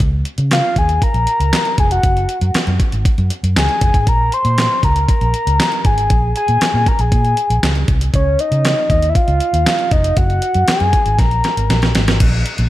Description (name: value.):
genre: early-eighties boogie funk.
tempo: 118 BPM.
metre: 4/4.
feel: straight.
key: Bb minor.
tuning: A4 = 440 Hz.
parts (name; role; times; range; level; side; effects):
vintage muted fingered electric bass; bass; 0.0-12.7 s; F1 to Db3; -16 LUFS; equal; none.
crisp 8-bit digital drum machine; drums; 0.0-12.7 s; crash cymbal, handclaps, hi-hat, kick drum, snare drum; -16 LUFS; equal; gated reverb.
soft octave-layered synth lead; melody; 0.5-12.0 s; Db5 to C6; -17 LUFS; left 1 dB; chorus.
room: light reverb.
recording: none.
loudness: -12 LUFS.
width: side -15 dB against mid.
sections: 0.0-12.2 A section.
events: drum fill 11.2-12.2.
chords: 0.0 Db69; 2.0 Gbsus2; 4.1 Bbm9; 8.1 Dbadd9; 10.2 Gbsus2; 11.2 Absus2.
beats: | 0.00 0.51 1.02 1.53 | 2.04 2.54 3.05 3.56 | 4.07 4.58 5.09 5.59 | 6.10 6.61 7.12 7.63 | 8.14 8.64 9.15 9.66 | 10.17 10.68 11.19 11.70 | 12.21.